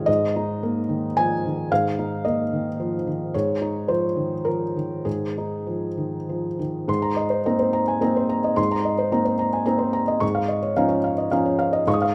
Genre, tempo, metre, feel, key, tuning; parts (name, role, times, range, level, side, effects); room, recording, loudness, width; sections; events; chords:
neoclassical minimalist piano; 96-113 BPM; 3/4; rubato; Ab major; A4 = 441 Hz
felt-muted upright piano; solo; 0.0-12.1 s; Ab2 to Eb6; -23 LUFS; equal
moderate recital hall reverb, RT60 1.7 s; -23 LUFS; mono
0.0-6.9 A section; 6.9-12.1 B section
0.1 Absus2; 3.3 Dbadd9/Ab; 6.9 Abadd9; 10.2 Dbadd9/Ab